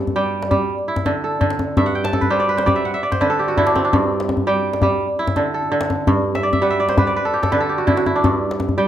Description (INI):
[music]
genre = west african traditional, West African string and xylophone music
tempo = 111 BPM (dotted quarters)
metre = 12/8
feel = straight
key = unclear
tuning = A4 = 440 Hz
[part]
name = kora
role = arpeggios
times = 0.0-8.9 s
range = G2 to A5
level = -17 LUFS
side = right 1 dB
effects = none
[part]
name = djembe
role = percussion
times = 0.1-8.8 s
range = none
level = -21 LUFS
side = left 2 dB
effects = none
[sound]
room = light reverb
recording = close, detailed microphones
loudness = -16 LUFS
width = side -11 dB against mid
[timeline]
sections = 0.0-8.9 A section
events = kora fill 1.8-3.9, 6.3-8.2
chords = 0.0 Gsus2; 0.7 D5; 1.8 N.C.; 5.0 D5; 6.1 N.C.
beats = 0.15 0.69 1.23 | 1.77 2.31 2.85 3.38 | 3.92 4.46 5.00 5.54 | 6.08 6.62 7.16 7.70 | 8.24 8.78